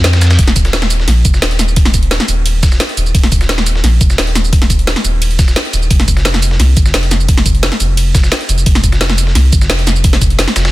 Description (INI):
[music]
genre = liquid drum and bass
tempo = 174 BPM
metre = 4/4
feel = straight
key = Eb major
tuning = A4 = 440 Hz
[part]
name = warm sub bass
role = bass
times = 0.0-10.7 s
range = Eb1 to F2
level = -12 LUFS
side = equal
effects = none
[part]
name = drum and bass drum kit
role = drums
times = 0.0-10.6 s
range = hi-hat, ride cymbal, shaker, snare drum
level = -15 LUFS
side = equal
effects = overdrive
[part]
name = dusty soul sampler-style drum kit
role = drums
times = 0.0-10.7 s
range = hi-hat, snare drum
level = -22 LUFS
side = left 1 dB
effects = high-pass filter on hats, high-pass filter on snare
[part]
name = electronic kick drum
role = drums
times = 0.4-10.3 s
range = none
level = -11 LUFS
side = equal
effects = overdrive
[sound]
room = digital ambience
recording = dense, heavily limited modern master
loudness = -9 LUFS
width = side -17 dB against mid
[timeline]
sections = 0.0-10.7 A section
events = none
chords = none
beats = 0.04 | 0.39 0.73 1.08 1.42 | 1.77 2.11 2.46 2.80 | 3.15 3.49 3.83 4.18 | 4.53 4.87 5.21 5.56 | 5.90 6.25 6.59 6.94 | 7.28 7.63 7.97 8.32 | 8.66 9.01 9.35 9.70 | 10.04 10.39